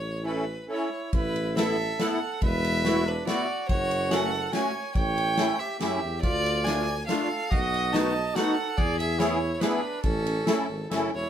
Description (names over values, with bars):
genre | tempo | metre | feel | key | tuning
alpine folk, alpine dance band | 140 BPM | 3/4 | rubato | A major | A4 = 442 Hz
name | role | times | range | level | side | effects
clear fiddle | melody | 0.0-11.3 s | A4 to A5 | -30 LUFS | right 1 dB | none
mellow tuba | bass | 0.0-11.3 s | E1 to F#2 | -31 LUFS | equal | none
musette accordion | accompaniment | 0.2-11.1 s | A3 to A4 | -28 LUFS | left 1 dB | none
mellow trumpet | second line | 0.7-11.3 s | C#4 to D#5 | -32 LUFS | right 4 dB | none
unplugged drum kit | drums | 1.1-11.0 s | kick drum, ride cymbal, snare drum | -30 LUFS | equal | none
room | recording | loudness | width
wet studio reverb, RT60 0.6 s | band playing live in one room | -24 LUFS | side -9 dB against mid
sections
0.0-1.1 A section; 1.1-11.3 A section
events
none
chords
0.0 A; 1.1 Asus2; 2.4 Esus2; 3.7 F#m; 4.9 A7; 6.2 Dm; 7.5 B7; 8.8 E7; 10.0 A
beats
0.24 0.68 | 1.12 1.56 1.99 | 2.42 2.85 3.27 | 3.69 4.11 4.52 | 4.94 5.36 5.79 | 6.22 6.65 7.08 | 7.51 7.93 8.36 | 8.77 9.19 9.61 | 10.03 10.46 10.90